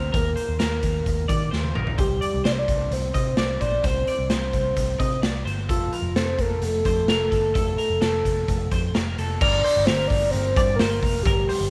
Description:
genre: jangly indie pop.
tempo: 130 BPM.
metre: 4/4.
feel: straight.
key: unclear.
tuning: A4 = 440 Hz.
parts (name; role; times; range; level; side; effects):
soft octave-layered synth lead; melody; 0.0-11.7 s; F4 to D5; -27 LUFS; equal; chorus, slapback echo.
twelve-string electric guitar; arpeggios; 0.0-11.7 s; A4 to Eb5; -33 LUFS; equal; lush chorus.
vintage muted picked electric bass; bass; 0.0-11.7 s; F1 to Eb3; -29 LUFS; equal; none.
raw garage drum kit; drums; 0.1-11.6 s; crash cymbal, hi-hat, kick drum, snare drum, toms; -27 LUFS; equal; none.
room: light reverb.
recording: none.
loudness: -23 LUFS.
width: mono.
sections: 0.0-9.4 A section; 9.4-11.7 B section.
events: drum fill 1.5-2.0.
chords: 0.0 Eb5; 2.0 Cmadd9; 5.7 F; 9.4 Gm.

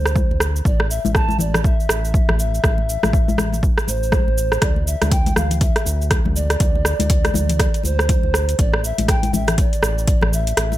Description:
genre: afro house.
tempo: 121 BPM.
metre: 4/4.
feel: swing 60% on 16ths.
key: unclear.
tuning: A4 = 440 Hz.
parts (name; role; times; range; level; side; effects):
mellow hollow polished pan flute; melody; 0.0-10.8 s; C5 to A5; -26 LUFS; equal; digital delay.
round analog bass; bass; 0.0-10.8 s; A1 to D2; -22 LUFS; equal; sidechain pumping.
deep house drum kit; drums; 0.1-10.8 s; cabasa, hi-hat, rim click; -22 LUFS; right 1 dB; overdrive.
electronic kick drum; drums; 0.2-10.2 s; none; -19 LUFS; equal; overdrive.
congas; percussion; 0.2-10.8 s; none; -25 LUFS; left 4 dB; none.
room: little or no reverb.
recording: none.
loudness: -16 LUFS.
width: side -14 dB against mid.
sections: 0.0-10.8 A section.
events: kick drops out 10.6.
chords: 0.0 N.C.; 0.7 A5; 4.6 N.C.; 8.6 Asus4.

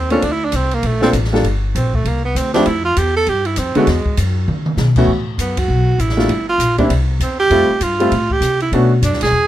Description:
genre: jazz, small-group swing and bop.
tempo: 198 BPM.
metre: 4/4.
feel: swing 62% on 8ths.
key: unclear.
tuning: A4 = 440 Hz.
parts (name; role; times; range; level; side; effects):
clear tenor saxophone; second line; 0.0-9.5 s; G#3 to A4; -17 LUFS; right 3 dB; none.
upright bass; bass; 0.0-9.5 s; G1 to C#3; -18 LUFS; left 1 dB; none.
clear concert grand piano; accompaniment; 0.1-8.9 s; D3 to A4; -16 LUFS; left 1 dB; none.
open jazz drum kit; drums; 0.1-9.3 s; crash cymbal, hi-hat, kick drum, ride cymbal, snare drum, toms; -24 LUFS; equal; none.
room: little or no reverb.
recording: close, detailed microphones.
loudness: -13 LUFS.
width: side -13 dB against mid.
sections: 0.0-5.1 A section; 5.1-9.5 A section.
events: tenor saxophone solo 0.0-9.5; drum fill 4.5-4.8.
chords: 0.2 Bbmaj9; 1.4 Gm; 2.1 C69; 2.7 Fmaj7sus2/E; 3.9 E69; 5.1 Asus2; 6.3 Gm7; 6.9 C; 7.5 Fmaj9; 8.7 Bm7.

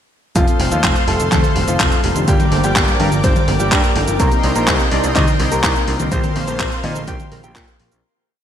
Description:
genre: italo disco.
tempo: 125 BPM.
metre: 4/4.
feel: straight.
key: Bb major.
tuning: A4 = 438 Hz.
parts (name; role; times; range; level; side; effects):
bright grand piano; melody; 0.4-7.9 s; F3 to G5; -22 LUFS; left 1 dB; ping-pong delay, shimmer reverb.
lush unison pad; sustained chords; 0.4-8.0 s; A4 to D6; -24 LUFS; equal; chorus, shimmer reverb.
analog pluck; arpeggios; 0.4-8.0 s; F2 to Bb4; -26 LUFS; right 3 dB; chorus, ping-pong delay, shimmer reverb.
overdriven picked electric bass; bass; 0.4-8.0 s; F1 to Bb2; -21 LUFS; equal; none.
electronic kick drum; drums; 0.4-7.7 s; none; -19 LUFS; equal; none.
gated 80s digital drum machine; drums; 0.4-8.0 s; cabasa, handclaps, hi-hat, toms; -19 LUFS; equal; gated reverb, overdrive.
mellow synth brass; stabs; 0.5-8.0 s; A3 to C5; -25 LUFS; left 2 dB; chorus, shimmer reverb.
room: moderate lush hall reverb, RT60 1.9 s.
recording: bright 1980s-style digital production.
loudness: -13 LUFS.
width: side -9 dB against mid.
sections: 0.4-8.0 chorus.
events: fade-out 5.5-8.0.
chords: 0.4 F; 2.3 Gm; 4.2 Cm7; 6.1 Bbsus2.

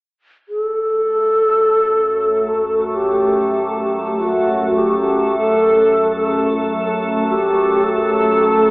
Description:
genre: dark ambient drone.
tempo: 49 BPM.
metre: 4/4.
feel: straight.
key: unclear.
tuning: A4 = 440 Hz.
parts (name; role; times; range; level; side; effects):
long shakuhachi; melody; 0.5-8.7 s; F#4 to A4; -15 LUFS; equal; tape echo.
organ-like drone; drone; 1.6-8.7 s; F#2 to A3; -19 LUFS; equal; ensemble chorus, built-in reverb, phaser.
room: wet plate reverb, RT60 3.0 s.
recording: echo-heavy mix, AM radio sound.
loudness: -14 LUFS.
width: side -29 dB against mid.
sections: 0.5-8.7 A section.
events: none.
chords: 0.5 F#m.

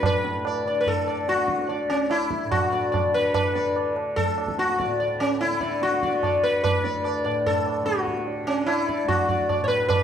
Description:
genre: indian classical, Hindustani.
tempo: 146 BPM.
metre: 4/4.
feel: straight.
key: D raga bilaval.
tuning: A4 = 438 Hz.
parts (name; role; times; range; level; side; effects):
sitar; melody; 0.0-10.0 s; C#4 to D5; -22 LUFS; left 2 dB; none.
tanpura; drone; 0.0-10.0 s; D2 to D3; -33 LUFS; right 2 dB; none.
tabla; percussion; 0.0-10.0 s; none; -28 LUFS; right 5 dB; none.
room: moderate recital hall reverb, RT60 1.6 s.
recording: dark, warm production.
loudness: -21 LUFS.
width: side -8 dB against mid.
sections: 0.0-10.0 A section.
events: none.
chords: none.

